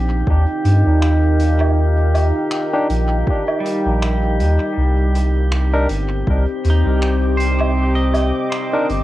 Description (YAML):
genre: ambient dub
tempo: 80 BPM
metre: 4/4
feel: swing 57% on 16ths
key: C minor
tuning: A4 = 440 Hz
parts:
  - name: deep dark ambient pad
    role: sustained chords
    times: 0.0-9.0 s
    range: C4 to D6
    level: -21 LUFS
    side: equal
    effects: chorus, built-in reverb, plate reverb
  - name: soft dub sub bass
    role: bass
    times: 0.0-9.0 s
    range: G1 to G2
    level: -16 LUFS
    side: equal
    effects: none
  - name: drifting glass-harmonics texture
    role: texture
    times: 0.0-9.0 s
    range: G4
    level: -27 LUFS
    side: left 2 dB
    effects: chorus, built-in reverb, plate reverb
  - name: electronic kick drum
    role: drums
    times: 0.3-6.4 s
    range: none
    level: -20 LUFS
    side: equal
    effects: cassette tape
  - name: soft-mallet drum kit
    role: drums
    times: 0.7-9.0 s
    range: finger snaps, hi-hat, woodblock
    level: -27 LUFS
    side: right 1 dB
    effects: cassette tape, dub echo
  - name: barky tine electric piano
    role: stabs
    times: 2.7-8.9 s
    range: D4 to Bb4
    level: -24 LUFS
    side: left 1 dB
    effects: overdrive, dub echo, plate reverb
  - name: pedal steel guitar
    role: arpeggios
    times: 3.6-9.0 s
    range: G3 to Eb5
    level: -26 LUFS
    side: right 2 dB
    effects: analog delay, plate reverb
room: light reverb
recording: home recording on cassette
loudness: -15 LUFS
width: side -15 dB against mid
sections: 0.0-9.0 A section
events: none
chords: 0.0 Eb; 4.8 Cm9